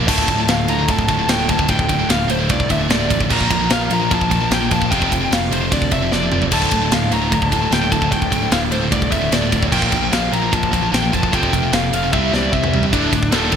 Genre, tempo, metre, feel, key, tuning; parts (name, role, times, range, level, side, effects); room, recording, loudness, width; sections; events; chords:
heavy metal; 150 BPM; 4/4; straight; D minor; A4 = 440 Hz
pipe organ, cornet; sustained chords; 0.0-13.6 s; C3 to A5; -32 LUFS; right 1 dB
high-gain distorted guitar; riff; 0.0-13.6 s; D2 to C4; -24 LUFS; left 8 dB; distortion, slapback echo
overdriven semi-hollow guitar; riff; 0.0-13.6 s; D2 to C4; -23 LUFS; equal; slapback echo
scooped high-gain guitar; riff; 0.0-13.6 s; D2 to C4; -23 LUFS; right 9 dB; distortion
modern bright picked electric bass; bass; 0.0-13.6 s; D1 to D2; -24 LUFS; equal
high-gain lead guitar; melody; 0.1-13.6 s; D4 to Bb5; -21 LUFS; left 2 dB; distortion, slapback echo, ping-pong delay
tight metal drum kit; drums; 0.1-13.6 s; crash cymbal, kick drum, ride cymbal, snare drum, toms; -20 LUFS; equal
moderate lush hall reverb, RT60 1.9 s; big arena sound; -14 LUFS; side -8 dB against mid
0.1-12.9 A section
drum fill 6.1-6.5, 12.1-12.9
0.1 Dm; 3.3 Bb; 4.9 F; 6.5 Dm; 9.7 Bb; 11.3 F; 12.1 C; 12.9 D5